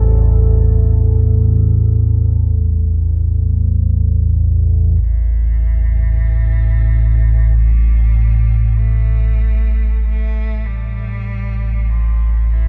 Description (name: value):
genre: dark ambient drone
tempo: free time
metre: none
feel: none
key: A minor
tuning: A4 = 439 Hz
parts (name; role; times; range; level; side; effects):
- dark analog pad; sustained chords; 0.0-5.0 s; A3 to C5; -35 LUFS; equal; chorus
- analog drone; drone; 0.0-12.7 s; A1 to E2; -15 LUFS; equal; lush chorus
- rich cello; melody; 5.0-12.7 s; E3 to A3; -36 LUFS; equal; diffuse ambient delay
room: wet cathedral reverb, RT60 6.8 s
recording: cassette tape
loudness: -15 LUFS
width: mono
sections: 0.0-5.0 A section; 5.0-12.7 B section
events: fade-out on analog synth pad 0.0-5.0; filter sweep on synth drone 5.0-12.7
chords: 0.0 Am; 5.0 A5